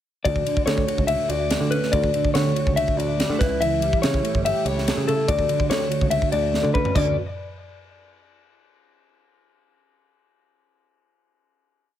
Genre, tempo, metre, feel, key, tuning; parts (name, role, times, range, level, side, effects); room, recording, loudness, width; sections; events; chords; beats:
math rock and midwest emo; 143 BPM; 4/4; straight; D major; A4 = 439 Hz
mellow electric guitar; arpeggios; 0.2-7.2 s; A4 to E5; -23 LUFS; left 5 dB; analog delay
mellow electric guitar; accompaniment; 0.3-7.2 s; D2 to G4; -26 LUFS; right 7 dB; ensemble chorus
picked electric bass; bass; 0.3-7.1 s; G1 to D3; -26 LUFS; equal
crisp fusion drum kit; drums; 0.3-7.1 s; crash cymbal, kick drum, ride cymbal, snare drum, toms; -26 LUFS; right 1 dB
light reverb; -19 LUFS; side -11 dB against mid
0.3-7.0 A section; 7.0-8.6 final chord
drum fill 6.5-7.0
0.3 Dmaj7; 3.4 A7/C#; 5.3 Dmaj7; 7.0 N.C.
| 0.25 0.67 1.09 1.51 | 1.93 2.35 2.77 3.19 | 3.61 4.03 4.45 4.86 | 5.28 5.70 6.12 6.53 | 6.95